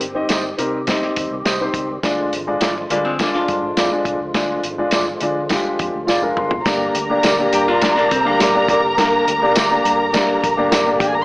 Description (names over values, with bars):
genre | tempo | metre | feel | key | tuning
uptempo 1960s-style soul | 104 BPM | 4/4 | straight | unclear | A4 = 440 Hz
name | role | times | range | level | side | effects
tonewheel organ | sustained chords | 0.0-11.2 s | D3 to G4 | -27 LUFS | equal | slow rotary speaker, overdrive, chorus vibrato
archtop guitar, miked and amplified | riff | 0.0-9.1 s | G3 to G4 | -22 LUFS | left 1 dB | none
vintage muted fingered electric bass | bass | 0.0-11.2 s | F1 to D3 | -34 LUFS | equal | none
warm soul drum kit | drums | 0.0-11.1 s | hi-hat, kick drum, snare drum, toms | -21 LUFS | equal | none
warm grand piano | accompaniment | 0.1-11.1 s | Ab3 to C6 | -20 LUFS | left 1 dB | none
electric guitar through a small old amp | stabs | 0.3-10.8 s | F4 to Eb5 | -22 LUFS | right 1 dB | none
tambourine | percussion | 0.3-10.9 s | none | -29 LUFS | right 1 dB | none
dark studio violin section | second line | 6.6-11.2 s | G4 to Bb5 | -18 LUFS | equal | none
room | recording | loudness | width
light reverb, small room ambience | small speaker sound | -15 LUFS | side -23 dB against mid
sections
0.0-6.7 A section; 6.7-11.2 B section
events
grand piano fill 5.8-6.7; drum fill 6.1-6.7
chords
0.0 Cm; 2.0 Ddim; 6.7 Gm